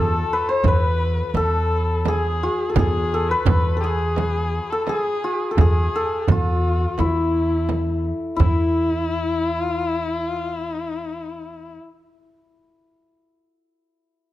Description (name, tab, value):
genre	Persian modal ensemble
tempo	85 BPM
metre	4/4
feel	straight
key	E dastgah chahargah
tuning	A4 = 440 Hz
part	santur	melody	0.0-11.8 s	E4 to C5+45c	-23 LUFS	left 1 dB	none
part	dark kamancheh	second line	0.0-11.8 s	E4 to C5+46c	-27 LUFS	left 4 dB	none
part	upright bass	bass	0.0-11.8 s	E2	-22 LUFS	equal	none
part	frame drum	percussion	0.6-8.7 s	none	-27 LUFS	right 5 dB	none
part	tombak	percussion	0.6-8.7 s	none	-25 LUFS	right 3 dB	none
room	light reverb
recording	close, detailed microphones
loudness	-19 LUFS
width	side -14 dB against mid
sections	0.0-8.4 A section; 8.4-11.2 B section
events	none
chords	none